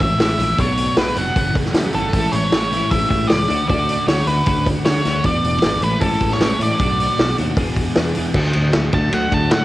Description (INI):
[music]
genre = indie rock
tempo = 155 BPM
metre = 4/4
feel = straight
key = A major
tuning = A4 = 444 Hz
[part]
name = octave-fuzz lead guitar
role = melody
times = 0.0-9.6 s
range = A4 to A5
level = -21 LUFS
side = right 1 dB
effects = distortion, cassette tape
[part]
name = sludgy distorted guitar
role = riff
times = 0.0-9.6 s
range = E2 to A4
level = -24 LUFS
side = right 3 dB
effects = overdrive, wide subtle chorus, cassette tape, tape echo
[part]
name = twelve-string electric guitar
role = riff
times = 0.0-9.6 s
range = F#2 to B4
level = -24 LUFS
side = left 4 dB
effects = cassette tape
[part]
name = modern bright fingered electric bass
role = bass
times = 0.0-9.6 s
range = E1 to D3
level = -23 LUFS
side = equal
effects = none
[part]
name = vintage drum kit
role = drums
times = 0.0-9.6 s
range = crash cymbal, hi-hat, kick drum, ride cymbal, snare drum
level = -20 LUFS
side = equal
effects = none
[sound]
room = light reverb, small room reverb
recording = home recording on cassette, lossy compression artefacts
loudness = -15 LUFS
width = side -16 dB against mid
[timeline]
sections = 0.0-8.4 A section; 8.4-9.6 B section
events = lead electric guitar solo 8.4-9.6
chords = 0.0 Amaj7; 0.6 Bm7; 1.4 F#m7; 2.1 Amaj7; 3.5 Dmaj7; 5.2 E7sus4; 5.8 Amaj7; 6.8 Bm7; 7.6 E7; 8.4 D